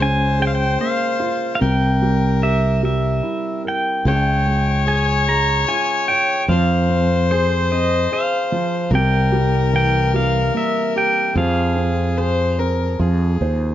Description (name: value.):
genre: acoustic folk-pop ballad.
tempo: 74 BPM.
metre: 3/4.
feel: straight.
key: F minor.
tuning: A4 = 438 Hz.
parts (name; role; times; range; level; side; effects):
pedal steel guitar; melody; 0.0-12.6 s; C5 to Bb5; -21 LUFS; right 1 dB; none.
warm violin; second line; 0.0-13.7 s; Ab4 to Db5; -23 LUFS; left 6 dB; none.
warm concert grand piano; accompaniment; 0.0-13.7 s; C3 to Db5; -24 LUFS; right 2 dB; none.
fretless electric bass; bass; 0.0-13.7 s; C2 to F2; -18 LUFS; equal; none.
room: light reverb.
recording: nothing above 7.7 kHz.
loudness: -16 LUFS.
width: side -12 dB against mid.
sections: 0.0-13.7 A section.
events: none.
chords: 0.0 Bbm7/Db; 1.6 C7; 4.1 Db; 6.5 Fm; 8.9 C7; 11.4 Fm.